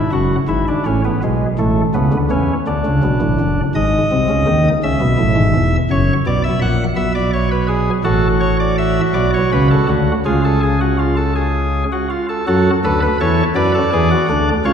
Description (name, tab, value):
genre	classical, baroque-style 3-part fugue for pipe organ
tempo	55 BPM (dotted quarters)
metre	6/8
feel	straight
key	B minor, F# minor from 8.1 s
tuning	A4 = 440 Hz
part	chamber organ, cornet	solo	0.0-14.7 s	E1 to F#5	-13 LUFS	equal	none
room	wet church reverb, RT60 2.5 s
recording	recorded in a church or concert hall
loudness	-13 LUFS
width	side -7 dB against mid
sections	0.0-12.5 A section; 12.5-14.7 B section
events	none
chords	0.5 E/G#; 1.6 A; 2.7 D; 3.8 G#; 4.8 C#m; 5.9 F#7; 7.0 Bm; 8.1 F#m/A; 9.1 Bm9; 10.3 C#; 12.5 F#m; 13.6 Bm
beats	0.50 | 1.59 2.67 | 3.76 4.84 | 5.91 6.98 | 8.05 9.15 | 10.25 11.36 | 12.47 13.57 | 14.64